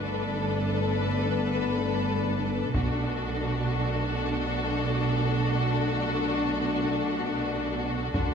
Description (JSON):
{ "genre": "cinematic, epic orchestral film score", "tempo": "free time", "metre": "none", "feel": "none", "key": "B minor", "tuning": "A4 = 440 Hz", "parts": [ { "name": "warm symphonic violin section", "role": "melody", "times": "0.0-8.3 s", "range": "A4 to B4", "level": "-34 LUFS", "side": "left 6 dB", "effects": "none" }, { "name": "warm symphonic violin section", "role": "second line", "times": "0.0-8.3 s", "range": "F#4 to A4", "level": "-33 LUFS", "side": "left 4 dB", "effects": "none" }, { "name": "warm symphonic viola section", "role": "accompaniment", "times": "0.0-8.3 s", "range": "D4", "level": "-34 LUFS", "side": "left 1 dB", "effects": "none" }, { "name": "mellow French horn section", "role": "sustained chords", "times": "0.0-8.3 s", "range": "A3 to F#4", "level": "-33 LUFS", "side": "left 4 dB", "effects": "none" }, { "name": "dark symphonic cello section", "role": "bass", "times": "0.0-8.3 s", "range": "G2 to D3", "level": "-32 LUFS", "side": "right 4 dB", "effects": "none" }, { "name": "warm symphonic double bass section", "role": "bass", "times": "0.0-8.3 s", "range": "G1 to D2", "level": "-32 LUFS", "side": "right 4 dB", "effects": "none" }, { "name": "taiko ensemble", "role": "drums", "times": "2.7-3.6, 8.1-8.3 s", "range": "none", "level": "-29 LUFS", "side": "equal", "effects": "none" } ], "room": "moderate scoring stage reverb, RT60 1.8 s", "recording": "none", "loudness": "-25 LUFS", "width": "side -6 dB against mid", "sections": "0.0-8.3 A section", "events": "build-up 0.0-8.3", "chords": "0.0 Gadd9; 2.7 Bm7" }